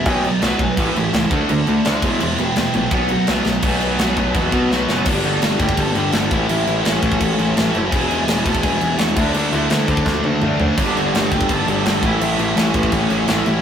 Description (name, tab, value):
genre	punk rock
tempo	168 BPM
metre	4/4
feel	straight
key	A major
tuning	A4 = 440 Hz
part	lead guitar through a small cranked amp	melody	0.0-13.6 s	C#4 to C6	-25 LUFS	left 1 dB	overdrive
part	distorted electric guitar	riff	0.0-5.1, 10.8-13.5 s	E2 to D4	-23 LUFS	right 5 dB	distortion
part	distorted electric guitar	riff	0.0-13.6 s	G2 to F#4	-23 LUFS	equal	overdrive
part	overdriven semi-hollow guitar	riff	0.0-13.5 s	E2 to D4	-23 LUFS	left 3 dB	none
part	growling picked electric bass	bass	0.0-13.6 s	E1 to B2	-22 LUFS	equal	overdrive
part	tight metal drum kit	drums	0.1-13.5 s	crash cymbal, kick drum, snare drum, splash cymbal, toms	-20 LUFS	equal	none
room	light reverb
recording	rough rehearsal-room recording, warm saturation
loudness	-15 LUFS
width	side -8 dB against mid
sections	0.0-3.6 A section; 3.6-5.1 B section; 5.1-13.6 C section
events	lead electric guitar solo 0.0-3.6; drum fill 3.5, 4.7-5.1, 10.1-10.8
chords	0.1 B; 0.8 A; 1.3 D; 2.0 E; 2.9 B; 5.1 G; 6.3 A; 7.9 E; 9.2 D; 10.8 G; 12.0 A